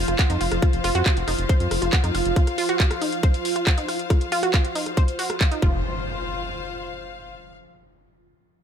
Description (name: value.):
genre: psychedelic trance.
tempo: 138 BPM.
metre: 4/4.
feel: straight.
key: unclear.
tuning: A4 = 440 Hz.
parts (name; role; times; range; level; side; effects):
evolving wavetable pad; sustained chords; 0.0-5.6 s; F3 to F4; -30 LUFS; right 2 dB; ensemble chorus, built-in reverb, phaser, sidechain pumping.
round analog bass; bass; 0.0-2.3, 5.6-5.8 s; F1 to F2; -25 LUFS; equal; none.
impact; sound effects; 0.0-0.6, 5.6-7.4 s; none; -35 LUFS; equal; none.
clear symphonic string section; texture; 0.0-7.5 s; F4 to F5; -31 LUFS; left 4 dB; sidechain pumping.
wide unison pluck; riff; 0.1-5.8 s; Eb4 to Gb5; -27 LUFS; moving between left 3 dB and right 5 dB; auto-pan, cassette tape, sidechain pumping, tape echo.
drum and bass drum kit; drums; 0.1-5.6 s; handclaps, hi-hat, rim click; -27 LUFS; equal; none.
electronic kick drum; drums; 0.2-5.7 s; none; -19 LUFS; equal; none.
room: light reverb.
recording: none.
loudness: -20 LUFS.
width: side -8 dB against mid.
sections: 0.0-5.8 A section; 5.8-7.6 B section.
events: impact 0.0-0.6; filter sweep on synth arpeggio sound 0.0-5.8; filter sweep on ambient pad 0.0-5.8.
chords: 0.0 F5.